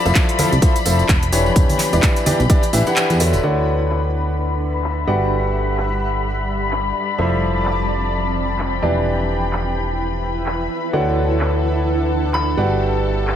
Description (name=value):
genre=piano house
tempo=128 BPM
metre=4/4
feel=swing 58% on 16ths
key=D major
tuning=A4 = 444 Hz
part: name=rich studio string section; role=sustained chords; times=0.0-13.4 s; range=A4 to B5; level=-26 LUFS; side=left 7 dB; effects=sidechain pumping, low-pass filter
part: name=clear grand piano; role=riff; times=0.0-13.4 s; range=D3 to F#5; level=-22 LUFS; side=equal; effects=sidechain pumping, digital delay
part: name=granular cloud pad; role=texture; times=0.0-13.4 s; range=F3 to B5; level=-25 LUFS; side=right 1 dB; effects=built-in reverb, sidechain pumping
part: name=solid FM bass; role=bass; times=0.1-13.4 s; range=D1 to E2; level=-21 LUFS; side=equal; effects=sidechain pumping
part: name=house drum kit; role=drums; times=0.1-13.4 s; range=handclaps, hi-hat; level=-24 LUFS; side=equal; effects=low-pass filter on hats, studio reverb, low-pass filter on snare
part: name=tambourine and congas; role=percussion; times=0.1-3.4 s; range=none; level=-26 LUFS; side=right 1 dB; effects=none
part: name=electronic kick drum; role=drums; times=0.2-2.6 s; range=none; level=-16 LUFS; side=equal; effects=studio reverb
part: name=soft synth bell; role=melody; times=12.3-12.5 s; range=B5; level=-25 LUFS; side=left 2 dB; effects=chorus, digital delay
room=light reverb, small room reverb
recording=none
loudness=-16 LUFS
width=side -10 dB against mid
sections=0.0-3.4 A section; 3.4-13.4 B section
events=kick drops out 3.0-3.4; band accent 3.0; filter sweep on string section 3.4-13.4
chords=0.0 Fmaj7; 1.3 Em7; 3.4 Dmaj7; 5.1 Gmaj7; 7.2 Fmaj7; 8.8 Em7; 10.9 Dmaj7; 12.6 Gmaj7